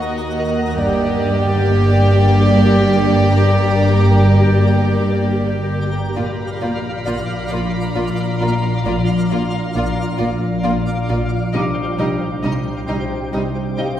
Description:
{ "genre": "cinematic, suspense film score", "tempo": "67 BPM", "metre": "3/4", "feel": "straight", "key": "unclear", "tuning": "A4 = 442 Hz", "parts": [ { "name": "warm studio violin section", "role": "melody", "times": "0.0-13.9 s", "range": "D5 to Eb5", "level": "-27 LUFS", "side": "left 1 dB", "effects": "none" }, { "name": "warm studio violin section", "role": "second line", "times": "0.0-13.9 s", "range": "Eb4 to G4", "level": "-24 LUFS", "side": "left 1 dB", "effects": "none" }, { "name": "warm studio viola section", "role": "accompaniment", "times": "0.0-13.9 s", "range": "G3 to Bb3", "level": "-24 LUFS", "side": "right 2 dB", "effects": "none" }, { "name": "twinkling granular texture", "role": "sustained chords", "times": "0.0-14.0 s", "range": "F4 to G5", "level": "-25 LUFS", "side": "equal", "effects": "built-in reverb" }, { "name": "dark studio double bass section", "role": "bass", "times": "0.0-13.9 s", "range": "G1 to Eb2", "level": "-21 LUFS", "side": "equal", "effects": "none" }, { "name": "warm studio cello section", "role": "bass", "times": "0.0-13.9 s", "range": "Eb2 to C3", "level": "-20 LUFS", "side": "right 1 dB", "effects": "none" }, { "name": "organ-like drone", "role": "drone", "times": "0.0-14.0 s", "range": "G1 to Eb2", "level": "-23 LUFS", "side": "left 1 dB", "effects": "ensemble chorus, built-in reverb" }, { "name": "vibraphone with medium mallets", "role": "texture", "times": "0.0-14.0 s", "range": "D4 to D6", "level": "-28 LUFS", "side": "right 1 dB", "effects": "none" }, { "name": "rich studio violin section", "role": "texture", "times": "6.2-11.0 s", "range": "Bb5 to Cb6", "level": "-33 LUFS", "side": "left 2 dB", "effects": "none" } ], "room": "wet scoring stage reverb, RT60 1.8 s", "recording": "heard from further back in the room", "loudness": "-14 LUFS", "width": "side -11 dB against mid", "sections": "0.0-14.0 A section", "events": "none", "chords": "0.0 Ebm; 0.8 Gm; 6.2 Bb; 11.5 Cm" }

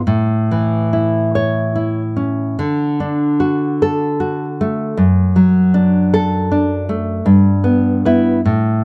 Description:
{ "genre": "romantic piece for solo classical guitar", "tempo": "45-54 BPM (dotted quarters)", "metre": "6/8", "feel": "rubato", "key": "D major", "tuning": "A4 = 441 Hz", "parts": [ { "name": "nylon-string guitar", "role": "solo", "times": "0.0-8.8 s", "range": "F#2 to C#5", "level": "-16 LUFS", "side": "equal", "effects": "none" } ], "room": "light reverb", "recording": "dark, warm production", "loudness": "-16 LUFS", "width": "mono", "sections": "0.0-8.8 A section", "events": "none", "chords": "0.0 A; 2.6 D; 5.0 D/F#; 7.2 Em/G" }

